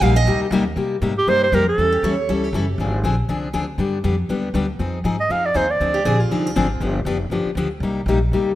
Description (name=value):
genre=acoustic string swing (jazz manouche)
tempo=239 BPM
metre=4/4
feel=swing 57% on 8ths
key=C minor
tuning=A4 = 441 Hz
part: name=picked steel-string acoustic guitar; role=second line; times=0.0-2.9, 5.9-7.0 s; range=Eb4 to F5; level=-25 LUFS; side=right 5 dB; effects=none
part: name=picked steel-string acoustic guitar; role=accompaniment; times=0.0-8.5 s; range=C3 to A4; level=-21 LUFS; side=left 3 dB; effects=none
part: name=upright bass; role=bass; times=0.0-8.6 s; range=F1 to C3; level=-23 LUFS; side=equal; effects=none
part: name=clear clarinet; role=melody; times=1.2-2.1, 5.2-6.2 s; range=G4 to F5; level=-19 LUFS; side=right 2 dB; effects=none
room=moderate lush hall reverb, RT60 2.1 s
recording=rough home demo mix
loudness=-18 LUFS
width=side -14 dB against mid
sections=0.8-8.6 A section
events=none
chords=0.0 Cm7; 1.8 A7; 2.8 Dm7b5; 3.8 G; 4.8 Fm7; 5.8 Dm7b5; 6.8 G7; 7.8 Cm7